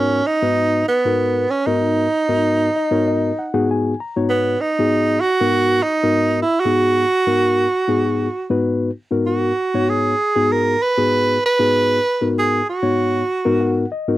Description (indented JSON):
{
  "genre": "jazz",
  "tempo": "97 BPM",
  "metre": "4/4",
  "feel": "straight",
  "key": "G# minor",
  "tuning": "A4 = 440 Hz",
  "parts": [
    { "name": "clear tenor saxophone", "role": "melody", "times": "0.0-13.9 s", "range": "B3 to B4", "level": "-17 LUFS", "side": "right 2 dB", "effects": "none" },
    { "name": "mellow reed electric piano", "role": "accompaniment", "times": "0.0-14.2 s", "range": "G#2 to A#5", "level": "-19 LUFS", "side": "left 3 dB", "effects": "none" }
  ],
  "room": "light reverb",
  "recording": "dry, close 1970s-style studio recording",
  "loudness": "-16 LUFS",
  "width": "side -15 dB against mid",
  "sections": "0.0-14.2 A section",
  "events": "reed electric piano fill 2.4-4.3, 13.3-14.2",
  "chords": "0.0 G#m9",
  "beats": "0.59 1.21 | 1.83 2.45 3.07 3.69 | 4.31 4.93 5.55 6.17 | 6.79 7.41 8.03 8.65 | 9.27 9.89 10.51 11.13 | 11.75 12.37 12.98 13.60"
}